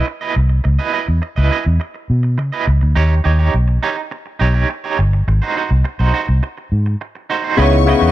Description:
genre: disco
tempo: 104 BPM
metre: 4/4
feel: straight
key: unclear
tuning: A4 = 440 Hz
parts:
  - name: electric guitar at the edge of break-up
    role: accompaniment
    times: 0.0-8.1 s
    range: D#4 to D#5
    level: -20 LUFS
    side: right 6 dB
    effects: tremolo
  - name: vintage muted fingered electric bass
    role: bass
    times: 0.4-8.1 s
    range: G1 to C#3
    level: -13 LUFS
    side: equal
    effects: none
  - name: clear symphonic string section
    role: second line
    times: 7.6-8.1 s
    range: C#5 to C#6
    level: -18 LUFS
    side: right 2 dB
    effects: none
  - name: overdriven tine electric piano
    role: accompaniment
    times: 7.6-8.1 s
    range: C#3 to E4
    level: -13 LUFS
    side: left 6 dB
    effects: phaser
  - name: dark French horn section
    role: sustained chords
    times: 7.6-8.1 s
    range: none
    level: barely audible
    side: none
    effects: none
room: studio ambience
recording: none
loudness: -14 LUFS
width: side -14 dB against mid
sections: 0.0-7.6 A section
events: none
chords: 0.0 C#m9; 3.0 D#aug7; 5.3 G#7; 7.6 C#m9

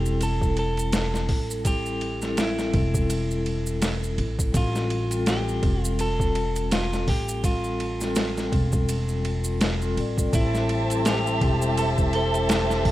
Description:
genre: trip hop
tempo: 83 BPM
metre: 4/4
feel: swing 57% on 16ths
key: A minor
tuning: A4 = 445 Hz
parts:
  - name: electric guitar at the edge of break-up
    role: melody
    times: 0.0-12.9 s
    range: E4 to A4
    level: -30 LUFS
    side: right 1 dB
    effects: tape echo
  - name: vibraphone with medium hard mallets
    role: accompaniment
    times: 0.0-12.9 s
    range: G3 to D5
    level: -29 LUFS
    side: left 2 dB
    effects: tremolo, tape echo
  - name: upright bass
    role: bass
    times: 0.0-12.9 s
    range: E1 to A1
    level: -27 LUFS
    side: equal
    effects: none
  - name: maracas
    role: percussion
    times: 0.1-12.8 s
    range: none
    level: -38 LUFS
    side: right 3 dB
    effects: none
  - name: boom bap sampler-style drum kit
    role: drums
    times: 0.2-12.9 s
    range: hi-hat, kick drum, ride cymbal, snare drum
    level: -27 LUFS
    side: equal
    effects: overdrive
  - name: warm studio violin section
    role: sustained chords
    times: 10.3-12.9 s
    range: G4 to A5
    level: -26 LUFS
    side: right 1 dB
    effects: none
room: small room ambience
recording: rough home demo mix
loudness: -22 LUFS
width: side -15 dB against mid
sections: 0.0-12.9 A section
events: none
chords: 0.0 Am7; 4.5 Fadd9; 10.3 Am7

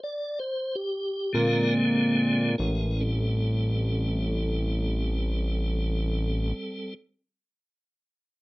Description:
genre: blues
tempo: free time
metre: none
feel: none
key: A minor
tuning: A4 = 440 Hz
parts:
  - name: tonewheel organ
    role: sustained chords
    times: 0.0-6.9 s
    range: D3 to D5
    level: -29 LUFS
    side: equal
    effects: slow rotary speaker
  - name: fat analog bass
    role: bass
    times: 1.3-6.5 s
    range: A1 to Bb2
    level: -25 LUFS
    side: equal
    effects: none
room: light reverb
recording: rough home demo mix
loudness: -24 LUFS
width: side -19 dB against mid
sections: 0.0-2.6 A section; 2.6-7.9 B section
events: slowing down 0.0-2.6; tonewheel organ solo 0.0-2.6; stop 0.0-1.4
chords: 0.0 N.C.; 1.4 Bb7; 2.6 Am7

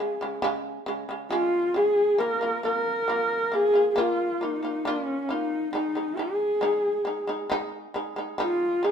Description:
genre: mongolian traditional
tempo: 68 BPM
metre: 4/4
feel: straight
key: Bb yu mode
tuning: A4 = 440 Hz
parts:
  - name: dark horsehead fiddle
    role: melody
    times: 0.0-8.9 s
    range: Db4 to Bb4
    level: -24 LUFS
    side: equal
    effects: none
  - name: shamisen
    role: arpeggios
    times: 0.0-8.9 s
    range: Db3 to F4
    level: -30 LUFS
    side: right 1 dB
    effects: none
room: moderate stone room reverb, RT60 1.0 s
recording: band playing live in one room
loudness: -24 LUFS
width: side -8 dB against mid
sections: 0.0-8.9 A section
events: none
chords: 0.0 Db5; 2.2 Bb5; 5.7 Ab5

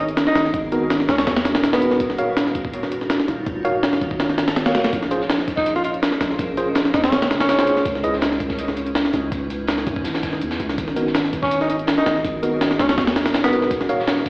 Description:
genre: drum and bass, jungle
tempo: 164 BPM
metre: 4/4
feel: straight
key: unclear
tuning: A4 = 441 Hz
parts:
  - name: warm tenor saxophone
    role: melody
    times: 0.0-2.0, 5.6-7.9, 11.4-13.7 s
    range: Cb4 to F4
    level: -23 LUFS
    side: equal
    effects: dub echo
  - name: granular cloud pad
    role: sustained chords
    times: 0.0-14.3 s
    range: Cb4 to Db5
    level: -28 LUFS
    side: equal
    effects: built-in reverb
  - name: long sustained 808-style bass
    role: bass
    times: 0.0-14.3 s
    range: Eb1 to Gb2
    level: -30 LUFS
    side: equal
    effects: none
  - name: jungle sampler-style drum kit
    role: drums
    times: 0.1-14.3 s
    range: hi-hat, kick drum, snare drum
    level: -20 LUFS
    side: equal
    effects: small room ambience
  - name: tine electric piano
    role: stabs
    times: 0.7-8.1, 11.0-14.0 s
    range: Cb4 to F5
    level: -25 LUFS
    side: equal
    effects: dub echo
  - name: crunchy breakbeat drum kit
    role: drums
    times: 4.9-14.3 s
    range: hi-hat, snare drum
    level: -32 LUFS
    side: equal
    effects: high-pass filter on hats, small room ambience, high-pass filter on snare, high-pass filter on room
room: moderate plate reverb, RT60 1.6 s, small room reverb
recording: played on a big sound system in a bare room, large studio reverb, vinyl crackle, AM radio sound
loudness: -17 LUFS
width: side -26 dB against mid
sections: 0.0-14.3 A section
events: none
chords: 0.0 Abm9; 2.0 Ebm9; 4.9 Bbm9; 7.9 Dbm9; 10.8 Abm9; 13.7 Ebm9

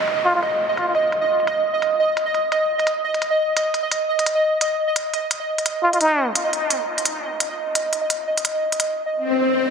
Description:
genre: half-time drum and bass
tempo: 172 BPM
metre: 4/4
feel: swing 57% on 16ths, half-time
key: unclear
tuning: A4 = 440 Hz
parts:
  - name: electronic hi-hat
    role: drums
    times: 0.0-8.9 s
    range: none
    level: -25 LUFS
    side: equal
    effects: overdrive, low-pass filter on hats, low-pass filter on toms, low-pass filter on snare, low-pass filter on room
  - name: downlifter and swell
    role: sound effects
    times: 0.0-1.5, 9.2-9.7 s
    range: none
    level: -24 LUFS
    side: left 2 dB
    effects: none
  - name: pulsing gated texture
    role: texture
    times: 0.0-9.1 s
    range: Eb5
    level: -20 LUFS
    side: right 1 dB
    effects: chorus, built-in reverb
  - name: trumpet with plunger mute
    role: melody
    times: 0.3-0.4, 5.8-6.3 s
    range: Eb4 to F4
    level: -23 LUFS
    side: equal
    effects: digital delay
room: moderate huge ambient reverb, RT60 7.7 s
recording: heavily compressed radio sound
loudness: -18 LUFS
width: side -6 dB against mid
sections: 0.0-9.7 A section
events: filter sweep on drum 0.0-9.7; swell 9.2-9.7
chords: none

